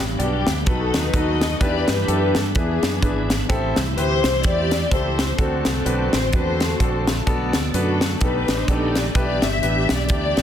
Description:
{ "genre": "uptempo gospel", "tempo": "127 BPM", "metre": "4/4", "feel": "swing 58% on 8ths", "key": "unclear", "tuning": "A4 = 440 Hz", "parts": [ { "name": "clear grand piano", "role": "accompaniment", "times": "0.0-10.4 s", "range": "G2 to D5", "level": "-26 LUFS", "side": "left 1 dB", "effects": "none" }, { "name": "tonewheel organ", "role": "sustained chords", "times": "0.0-10.4 s", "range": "D3 to A4", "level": "-31 LUFS", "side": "right 6 dB", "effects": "fast rotary speaker, overdrive, chorus vibrato" }, { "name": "fingered electric bass", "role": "bass", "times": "0.0-10.4 s", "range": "G1 to G2", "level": "-25 LUFS", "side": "right 1 dB", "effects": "none" }, { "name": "warm studio string section", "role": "melody", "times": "0.2-10.4 s", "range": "B3 to E5", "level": "-24 LUFS", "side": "left 2 dB", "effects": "none" }, { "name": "crisp fusion drum kit", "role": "drums", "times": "0.2-10.4 s", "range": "hi-hat, kick drum, snare drum", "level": "-22 LUFS", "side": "equal", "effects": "none" } ], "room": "light reverb", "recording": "dense, heavily limited modern master", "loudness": "-18 LUFS", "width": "side -10 dB against mid", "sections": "0.0-10.4 A section", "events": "none", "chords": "0.0 Gmaj7; 0.7 B7; 1.6 Em7; 2.6 E7; 3.5 Am7; 5.4 D7; 7.3 Bm7; 8.2 B7alt; 9.2 Em7", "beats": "0.20 0.67 1.14 | 1.61 2.08 2.55 3.02 | 3.50 3.97 4.44 4.91 | 5.38 5.85 6.33 6.80 | 7.27 7.74 8.21 8.68 | 9.15 9.62 10.10" }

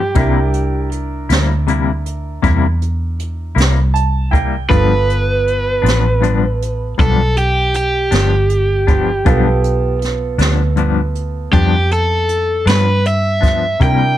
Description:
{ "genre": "slow blues", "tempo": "53 BPM (dotted quarters)", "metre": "12/8", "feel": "straight", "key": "G mixolydian", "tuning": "A4 = 440 Hz", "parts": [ { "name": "overdriven electric guitar", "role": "melody", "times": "0.0-14.2 s", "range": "G4 to G5", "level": "-17 LUFS", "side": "right 1 dB", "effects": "none" }, { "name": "bright upright piano", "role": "accompaniment", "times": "0.0-14.2 s", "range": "B3 to A5", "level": "-24 LUFS", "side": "right 6 dB", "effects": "none" }, { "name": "semi-hollow electric guitar", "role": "accompaniment", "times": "0.0-14.0 s", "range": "G2 to E4", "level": "-19 LUFS", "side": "left 7 dB", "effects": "tremolo" }, { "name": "vintage muted fingered electric bass", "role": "bass", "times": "0.0-14.2 s", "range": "G1 to C3", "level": "-16 LUFS", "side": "equal", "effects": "none" }, { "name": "jazz brush drum kit", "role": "drums", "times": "0.1-14.0 s", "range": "hi-hat, kick drum, snare drum", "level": "-18 LUFS", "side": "equal", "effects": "none" } ], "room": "light reverb", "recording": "dark, warm production", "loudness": "-13 LUFS", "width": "side -12 dB against mid", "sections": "0.0-14.2 A section", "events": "upright piano fill 3.6-4.7", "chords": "0.2 C7; 4.7 G7", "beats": "| 0.17 1.30 2.44 3.58 | 4.71 5.85 6.98 8.12 | 9.26 10.39 11.53 12.67 | 13.81" }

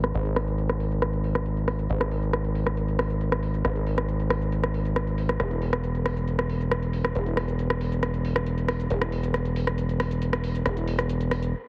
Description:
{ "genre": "driving peak-time techno", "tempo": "137 BPM", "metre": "4/4", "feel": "straight", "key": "unclear", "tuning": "A4 = 440 Hz", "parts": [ { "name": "gritty driven synth bass", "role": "bass", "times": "0.0-11.5 s", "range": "E1 to G#1", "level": "-28 LUFS", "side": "equal", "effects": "none" }, { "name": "punchy analog drum machine", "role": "drums", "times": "0.0-11.5 s", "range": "hi-hat, rim click, shaker", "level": "-31 LUFS", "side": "equal", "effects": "low-pass filter on snare, low-pass filter on hats, low-pass filter on perc, low-pass filter on cymbals, low-pass filter on room" } ], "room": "moderate plate reverb, RT60 2.3 s", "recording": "heavily compressed radio sound", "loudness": "-26 LUFS", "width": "mono", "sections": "0.0-11.7 A section", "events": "none", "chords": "none", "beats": "| 0.14 0.58 1.02 1.46 | 1.90 2.33 2.77 3.21 | 3.65 4.09 4.53 4.96 | 5.40 5.84 6.28 6.71 | 7.15 7.59 8.03 8.47 | 8.90 9.34 9.78 10.22 | 10.66 11.09 11.53" }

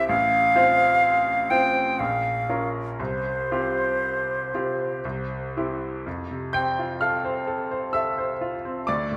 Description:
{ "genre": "classical, romantic duo for flute and grand piano", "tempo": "58-65 BPM", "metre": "3/4", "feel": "rubato", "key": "F major", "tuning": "A4 = 441 Hz", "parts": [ { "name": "silver concert flute", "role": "melody", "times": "0.0-5.5 s", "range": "C5 to G5", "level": "-24 LUFS", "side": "equal", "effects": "none" }, { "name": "bright grand piano", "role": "accompaniment", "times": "0.0-9.2 s", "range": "A1 to G6", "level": "-28 LUFS", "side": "equal", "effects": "none" } ], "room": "wet recital hall reverb, RT60 1.4 s", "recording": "none", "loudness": "-24 LUFS", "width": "mono", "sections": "0.0-6.1 A section; 6.1-9.2 B section", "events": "none", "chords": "0.1 F/A; 2.0 Bbm; 3.0 Csus4; 5.0 C; 6.1 F", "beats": "| 0.09 1.02 1.99 | 2.99 4.02 5.04 | 6.06 7.02 7.95 | 8.88" }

